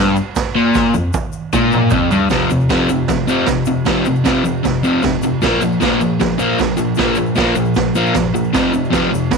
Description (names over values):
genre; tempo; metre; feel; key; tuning
garage rock duo or trio; 154 BPM; 4/4; straight; unclear; A4 = 438 Hz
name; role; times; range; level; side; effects
crunchy overdriven guitar; riff; 0.0-9.4 s; F2 to Bb3; -14 LUFS; left 1 dB; none
egg shaker; percussion; 0.2-9.4 s; none; -38 LUFS; left 14 dB; none
raw garage drum kit; drums; 0.4-9.4 s; crash cymbal, kick drum, snare drum, toms; -20 LUFS; right 5 dB; none
room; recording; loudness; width
light reverb, studio reverb; 1960s-style stereo; -13 LUFS; side -4 dB against mid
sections
0.0-2.3 A section; 2.3-9.4 B section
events
drum fill 0.7-2.3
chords
0.0 N.C.; 2.3 F5; 5.4 Bb5; 8.5 F5